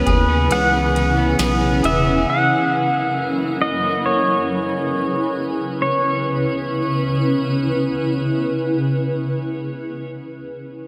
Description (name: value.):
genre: dream pop.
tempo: 68 BPM.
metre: 4/4.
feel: straight.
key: C# dorian.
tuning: A4 = 435 Hz.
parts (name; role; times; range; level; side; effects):
pedal steel guitar; melody; 0.0-10.1 s; B4 to F#5; -24 LUFS; equal; analog chorus, tape echo.
granular cloud pad; sustained chords; 0.0-10.1 s; C#3 to B4; -23 LUFS; equal; built-in reverb, subtle chorus.
electric guitar at the edge of break-up; arpeggios; 0.0-2.9 s; E3 to G#4; -27 LUFS; equal; analog chorus, tape echo.
chorused synth bass; bass; 0.0-2.3 s; E1 to D#2; -23 LUFS; equal; none.
booming analog drum machine; drums; 0.1-2.0 s; kick drum, ride cymbal, snare drum, tambourine; -29 LUFS; equal; none.
room: wet huge ambient reverb, RT60 7.3 s.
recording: dreamy mix soaked in reverb.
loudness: -19 LUFS.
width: mono.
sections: 0.0-5.8 A section; 5.8-9.3 B section.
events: none.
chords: 0.0 C#m7; 2.3 F#7; 4.0 C#m7.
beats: 0.51 1.40 | 2.28 3.16 4.04 4.92 | 5.81 6.69 7.57 8.46.